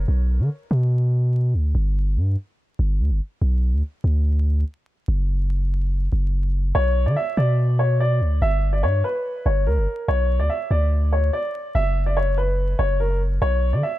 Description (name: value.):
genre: hip hop, drill.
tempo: 144 BPM.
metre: 4/4.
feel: half-time.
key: B harmonic minor.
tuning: A4 = 440 Hz.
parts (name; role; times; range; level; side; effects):
long sustained 808-style bass; bass; 0.0-13.8 s; F#1 to D3; -19 LUFS; equal; none.
warm upright piano; melody; 6.7-14.0 s; A#4 to E5; -24 LUFS; left 1 dB; low-pass filter.
room: small room ambience.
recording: vinyl crackle.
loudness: -19 LUFS.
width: side -15 dB against mid.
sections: 0.0-14.0 A section.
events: break 0.1-6.7.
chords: 0.1 Bm; 1.7 G5; 3.4 Bm; 5.1 N.C.; 6.7 Bm; 8.4 G; 10.1 Bm; 11.7 F#sus4; 13.4 Bm.